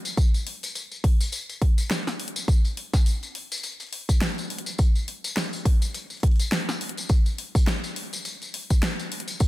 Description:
glitch hop; 104 BPM; 4/4; swing 58% on 16ths
pop drum kit; drums; 0.1-9.5 s; hi-hat, snare drum; -30 LUFS; equal
tambourine; percussion; 0.1-9.5 s; -33 LUFS; left 3 dB
electronic kick drum; drums; 0.2-9.5 s; -20 LUFS; equal
digital ambience; -23 LUFS; side -17 dB against mid
0.0-9.5 A section

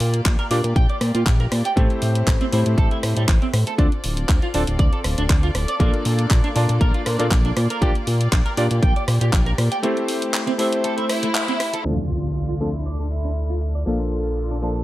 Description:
nu-disco, nu disco; 119 BPM; 4/4; swing 53% on 16ths; D minor; A4 = 440 Hz
warm studio string section; sustained chords; 0.0-14.8 s; A3 to F6; -31 LUFS; equal; sidechain pumping
fat analog bass; bass; 0.0-14.8 s; D1 to Bb2; -21 LUFS; equal
house drum kit; drums; 0.0-14.8 s; cabasa, handclaps, hi-hat, rim click; -26 LUFS; equal; low-pass filter on hats, low-pass filter on cymbals, low-pass filter on snare, low-pass filter on perc, low-pass filter on room
electronic kick drum; drums; 0.3-9.4 s; -18 LUFS; equal
electric guitar at the edge of break-up; riff; 0.4-14.7 s; G3 to G5; -28 LUFS; right 3 dB; wide subtle chorus, low-pass filter, tape echo
warm electric grand piano; accompaniment; 0.5-14.8 s; F3 to A5; -25 LUFS; left 1 dB; sidechain pumping, tape echo
warm studio violin section; melody; 11.1-14.8 s; D4 to A4; -29 LUFS; equal
impact; sound effects; 11.9-13.9 s; -29 LUFS; equal
little or no reverb; low-pass filter; -18 LUFS; side -16 dB against mid
0.0-11.9 A section; 11.9-14.8 B section
break 9.8-11.9; band accent 11.3; impact 11.9-13.9; filter sweep on clean electric guitar 11.9-14.8; filter sweep 11.9-14.8
0.0 Gm7/Bb; 1.8 Am7; 3.8 Dm7; 5.8 Bbmaj7; 7.8 Gm7/Bb; 9.8 Am7; 11.9 Dm7; 13.9 Bbmaj7

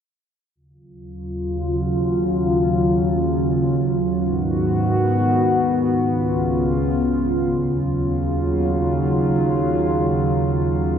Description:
hip hop; free time; Eb minor; A4 = 440 Hz
warbly tape-like pad; solo; 1.2-11.0 s; Db2 to Gb4; -18 LUFS; equal; chorus, built-in reverb, low-pass filter, analog delay
wet lush hall reverb, RT60 2.3 s; dreamy mix soaked in reverb; -18 LUFS; side -8 dB against mid
0.6-7.5 A section; 7.5-11.0 B section
filter sweep on ambient pad 0.6-7.5
0.6 Ebm9; 4.0 Abm7; 5.7 Db7; 7.5 Ebm9

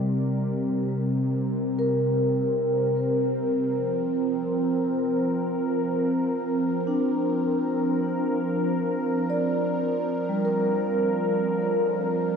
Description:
ambient; free time; A4 = 440 Hz
warm analog pad; sustained chords; 0.0-12.4 s; C3 to D5; -24 LUFS; equal; chorus
vibraphone with soft mallets; arpeggios; 0.0-12.4 s; G3 to D5; -27 LUFS; equal; diffuse ambient delay
wet huge ambient reverb, RT60 8.3 s; dark, warm production; -23 LUFS; side -6 dB against mid
0.0-12.4 A section
filter sweep on analog synth pad 0.0-12.4
0.0 C5; 3.7 Fsus4

